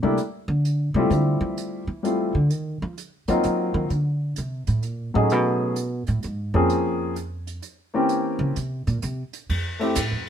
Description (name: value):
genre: jazz piano trio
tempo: 129 BPM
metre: 3/4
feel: swing 66% on 8ths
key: unclear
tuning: A4 = 438 Hz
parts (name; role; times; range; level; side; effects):
- warm upright piano; melody; 0.0-10.0 s; E3 to Ab4; -22 LUFS; left 2 dB; none
- upright bass; bass; 0.0-10.3 s; F2 to Gb3; -24 LUFS; right 1 dB; none
- jazz brush drum kit; drums; 0.2-10.3 s; hi-hat, kick drum, ride cymbal; -32 LUFS; right 2 dB; none
room: light reverb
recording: minimal, uncompressed stereo recording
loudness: -22 LUFS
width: side -8 dB against mid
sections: 0.0-9.5 A section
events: upright bass solo 0.0-9.5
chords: 0.0 C69; 1.1 Fmaj7; 2.5 Ebm69; 3.9 Amadd11; 5.3 B13; 6.7 Bbm9; 8.1 C7b9; 9.5 F